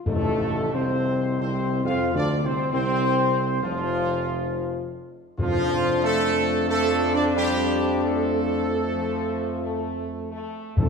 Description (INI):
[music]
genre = classical, ceremonial fanfare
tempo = 67 BPM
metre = 3/4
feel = straight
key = F major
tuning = A4 = 440 Hz
[part]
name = mellow French horn section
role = sustained chords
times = 0.0-10.9 s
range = F3 to F4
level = -28 LUFS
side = left 4 dB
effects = none
[part]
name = mellow trumpet section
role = melody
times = 0.1-10.9 s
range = F4 to F5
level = -28 LUFS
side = equal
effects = none
[part]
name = clear trombone section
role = sustained chords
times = 0.1-10.9 s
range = F3 to F4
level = -28 LUFS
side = equal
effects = none
[part]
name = warm tuba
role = bass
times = 0.1-10.9 s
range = F1 to F2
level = -27 LUFS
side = right 3 dB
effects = none
[part]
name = tam-tam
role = percussion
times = 0.1-3.6 s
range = none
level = -38 LUFS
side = equal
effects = none
[part]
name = timpani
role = percussion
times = 0.1-6.7, 10.8-10.9 s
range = F2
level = -28 LUFS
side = left 2 dB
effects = none
[sound]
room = wet scoring stage reverb, RT60 1.5 s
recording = heard from further back in the room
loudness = -21 LUFS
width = side -5 dB against mid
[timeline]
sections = 0.1-10.9 A section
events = band accent 0.1-1.0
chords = 0.1 F/A; 5.4 Dm/F